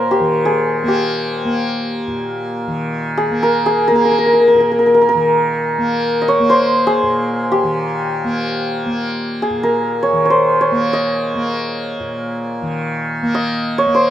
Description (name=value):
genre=indian classical, Hindustani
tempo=free time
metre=none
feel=none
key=Bb raga bageshri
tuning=A4 = 445 Hz
part: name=santur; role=melody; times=0.0-14.1 s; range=G4 to Eb5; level=-15 LUFS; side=equal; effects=none
part: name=tanpura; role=drone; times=0.0-14.1 s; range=Bb2 to Bb3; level=-20 LUFS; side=equal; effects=none
room=light reverb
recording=close, detailed microphones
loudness=-14 LUFS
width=side -11 dB against mid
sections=0.0-14.1 A section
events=none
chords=none